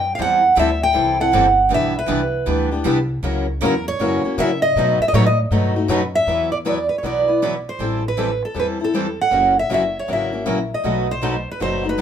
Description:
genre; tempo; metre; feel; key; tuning
acoustic string swing (jazz manouche); 158 BPM; 4/4; swing 64% on 8ths; E minor; A4 = 441 Hz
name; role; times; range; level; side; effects
picked steel-string acoustic guitar; melody; 0.0-12.0 s; A4 to G5; -18 LUFS; right 2 dB; none
upright bass; bass; 0.0-12.0 s; F#1 to C#3; -24 LUFS; equal; none
picked steel-string acoustic guitar; accompaniment; 0.2-12.0 s; B2 to B4; -23 LUFS; left 4 dB; none
picked steel-string acoustic guitar; accompaniment; 0.2-12.0 s; B2 to B4; -26 LUFS; right 4 dB; none
room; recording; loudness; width
moderate club reverb, RT60 0.8 s; minimal, uncompressed stereo recording; -16 LUFS; side -8 dB against mid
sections
0.0-6.3 A section; 6.3-12.0 B section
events
none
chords
0.2 Am7; 1.7 Em7; 3.2 F#7; 4.8 B7; 6.3 Esus2; 7.8 Am7; 9.3 F#7; 10.8 B7

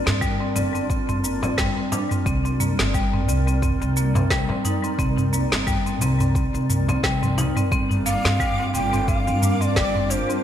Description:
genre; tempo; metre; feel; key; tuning
organic downtempo; 88 BPM; 4/4; swing 56% on 16ths; C minor; A4 = 442 Hz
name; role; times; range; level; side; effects
granular cloud pad; sustained chords; 0.0-10.4 s; G3 to F5; -29 LUFS; left 1 dB; built-in reverb, vintage 12-bit sampler grit, sidechain pumping
marimba with hard mallets; arpeggios; 0.0-10.4 s; G3 to Eb4; -26 LUFS; equal; ping-pong delay
upright bass; bass; 0.1-10.2 s; G1 to G2; -24 LUFS; equal; sidechain pumping
afro-pop drum kit; drums; 0.1-10.4 s; shaker, snare drum, toms; -26 LUFS; equal; none
electronic kick drum; drums; 0.2-9.9 s; none; -26 LUFS; equal; none
frame drum; percussion; 0.6-7.5 s; none; -31 LUFS; left 2 dB; none
twinkling granular texture; texture; 8.1-10.4 s; D6; -33 LUFS; equal; built-in reverb, ensemble chorus
breathy ney; melody; 8.1-10.4 s; C5 to G5; -25 LUFS; equal; digital delay
room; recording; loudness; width
light reverb, studio reverb; bright 1980s-style digital production; -19 LUFS; side -10 dB against mid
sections
0.0-7.7 A section; 7.7-10.4 B section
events
drum fill 7.0-7.7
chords
0.0 Gm7; 2.3 Cm9; 7.7 Gm7

